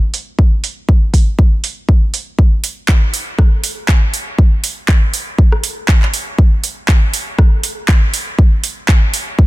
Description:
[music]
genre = house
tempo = 120 BPM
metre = 4/4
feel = swing 55% on 16ths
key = none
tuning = none
[part]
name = house drum kit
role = drums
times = 0.1-9.2 s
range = handclaps, hi-hat, rim click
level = -19 LUFS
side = right 2 dB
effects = low-pass filter on hats, studio reverb, low-pass filter on snare
[part]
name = electronic kick drum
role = drums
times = 0.4-9.5 s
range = none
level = -10 LUFS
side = equal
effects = studio reverb
[sound]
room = digital ambience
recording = dense, heavily limited modern master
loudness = -11 LUFS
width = side -19 dB against mid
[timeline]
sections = 0.0-2.4 A section; 2.4-9.5 B section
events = build-up 2.4-9.5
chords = none

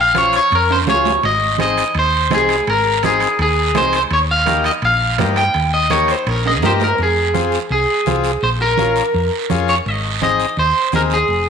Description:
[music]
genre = latin, cumbia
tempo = 167 BPM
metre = 4/4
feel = straight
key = unclear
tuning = A4 = 440 Hz
[part]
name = electric guitar at the edge of break-up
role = melody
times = 0.0-11.5 s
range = G4 to G5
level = -16 LUFS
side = equal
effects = spring reverb
[part]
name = hollow-body short-scale fingered electric bass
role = bass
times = 0.0-11.5 s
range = F1 to G2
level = -21 LUFS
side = left 1 dB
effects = none
[part]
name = combo organ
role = accompaniment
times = 0.1-11.2 s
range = Bb3 to C5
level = -23 LUFS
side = left 10 dB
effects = none
[part]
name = congas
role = percussion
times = 0.1-11.5 s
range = none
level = -26 LUFS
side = right 10 dB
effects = none
[part]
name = timbales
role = percussion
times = 0.1-6.9 s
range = none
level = -25 LUFS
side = right 11 dB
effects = none
[part]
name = guiro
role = percussion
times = 0.2-11.5 s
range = none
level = -28 LUFS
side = right 12 dB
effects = none
[sound]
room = moderate echo chamber reverb, RT60 2.0 s, studio reverb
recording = 1960s-style stereo with parts hard left and right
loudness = -13 LUFS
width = side -7 dB against mid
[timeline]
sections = 0.0-7.0 A section; 7.0-11.5 B section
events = drum fill 0.7-1.2, 6.4-7.0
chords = 0.0 Bbm; 1.2 Ab; 4.1 Eb; 7.0 Fm; 8.4 Bbm; 9.9 Ab

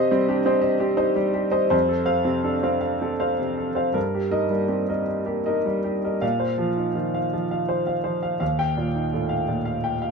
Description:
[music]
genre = neoclassical minimalist piano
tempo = 55 BPM (dotted quarters)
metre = 6/8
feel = rubato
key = unclear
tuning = A4 = 440 Hz
[part]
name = warm grand piano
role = solo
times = 0.0-10.1 s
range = Eb2 to G5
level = -21 LUFS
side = equal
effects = none
[sound]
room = light reverb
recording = minimal, uncompressed stereo recording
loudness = -21 LUFS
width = side -4 dB against mid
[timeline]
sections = 0.0-6.2 A section; 6.2-10.1 B section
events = none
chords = 0.0 Cm; 1.7 F; 4.0 Eb/G; 6.2 Bbsus2; 8.4 Ebadd9

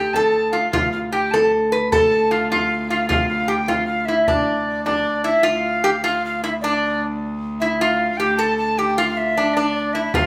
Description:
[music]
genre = medieval dance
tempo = 102 BPM (dotted quarters)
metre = 6/8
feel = straight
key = D minor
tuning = A4 = 440 Hz
[part]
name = metal-body resonator slide guitar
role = melody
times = 0.0-10.3 s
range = D4 to B4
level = -21 LUFS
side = equal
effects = none
[part]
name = breathy alto recorder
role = second line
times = 0.0-10.3 s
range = D5 to A5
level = -25 LUFS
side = equal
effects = none
[part]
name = rich viola da gamba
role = drone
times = 0.0-10.3 s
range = D2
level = -30 LUFS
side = equal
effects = none
[part]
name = frame drum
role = percussion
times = 0.1-5.2, 10.1-10.3 s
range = none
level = -29 LUFS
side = equal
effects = none
[sound]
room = moderate large studio reverb, RT60 0.9 s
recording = band playing live in one room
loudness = -19 LUFS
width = mono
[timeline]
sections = 0.0-5.5 A section; 5.5-10.3 B section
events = none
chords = none

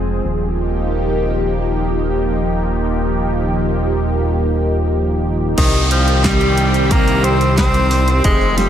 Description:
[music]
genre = synthwave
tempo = 90 BPM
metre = 4/4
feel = straight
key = C minor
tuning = A4 = 440 Hz
[part]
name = lush unison pad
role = sustained chords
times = 0.0-8.7 s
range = C3 to Ab4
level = -19 LUFS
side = equal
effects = chorus, phaser, sidechain pumping
[part]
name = fat analog bass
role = bass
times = 0.0-8.7 s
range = Eb1 to C2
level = -18 LUFS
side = equal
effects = tube saturation
[part]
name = bright tenor saxophone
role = melody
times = 5.6-8.7 s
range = Eb3 to C4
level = -18 LUFS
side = equal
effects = diffuse ambient delay
[part]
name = airy dreamy lead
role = second line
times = 5.6-8.7 s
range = Eb4 to C5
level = -24 LUFS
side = equal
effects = chorus, diffuse ambient delay
[part]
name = electronic kick drum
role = drums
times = 5.6-8.4 s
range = none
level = -17 LUFS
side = equal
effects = small room reverb
[part]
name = pop drum kit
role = drums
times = 5.6-8.7 s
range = crash cymbal, handclaps, hi-hat, shaker, snare drum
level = -24 LUFS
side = equal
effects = small room reverb
[part]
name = downlifter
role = sound effects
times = 5.6-8.7 s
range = none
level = -25 LUFS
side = equal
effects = none
[sound]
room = moderate huge ambient reverb, RT60 7.8 s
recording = dreamy mix soaked in reverb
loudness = -14 LUFS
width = side -10 dB against mid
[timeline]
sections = 0.0-5.6 A section; 5.6-8.7 B section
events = none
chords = 0.2 Ebadd9; 5.6 Cm

